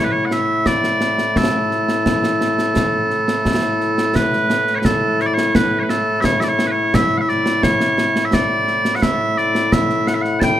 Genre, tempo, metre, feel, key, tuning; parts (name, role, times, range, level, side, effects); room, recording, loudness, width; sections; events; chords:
scottish traditional, Scottish pipe music; 86 BPM; 4/4; straight; A major; A4 = 436 Hz
loud bright bagpipes; melody; 0.0-10.6 s; A2 to A5; -16 LUFS; equal
concert snare drum and concert bass drum; drums; 0.3-10.6 s; -20 LUFS; equal
light reverb; rough home demo mix; -15 LUFS; side -12 dB against mid
0.0-4.1 A section; 4.1-10.6 B section